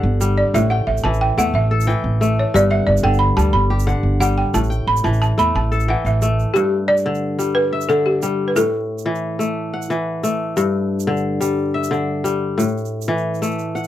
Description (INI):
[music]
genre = west african traditional, West African string and xylophone music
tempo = 120 BPM (dotted quarters)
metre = 12/8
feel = straight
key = unclear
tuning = A4 = 439 Hz
[part]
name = balafon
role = melody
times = 0.0-9.2 s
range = G4 to B5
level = -19 LUFS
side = right 1 dB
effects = none
[part]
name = kora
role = arpeggios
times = 0.0-13.9 s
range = G2 to G5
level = -20 LUFS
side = left 2 dB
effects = none
[part]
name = upright bass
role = bass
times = 0.0-6.4 s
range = G1 to E2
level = -18 LUFS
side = right 1 dB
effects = none
[part]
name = tube shaker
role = percussion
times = 0.2-13.9 s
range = none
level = -34 LUFS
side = right 16 dB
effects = none
[sound]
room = light reverb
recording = dry, close 1970s-style studio recording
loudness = -16 LUFS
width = side -12 dB against mid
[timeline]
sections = 0.0-6.6 A section; 6.6-13.9 B section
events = balafon solo 0.0-6.6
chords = 0.0 G; 0.5 A5; 2.5 G; 4.5 A5; 6.6 G5; 8.6 A5; 10.6 G5; 12.6 A5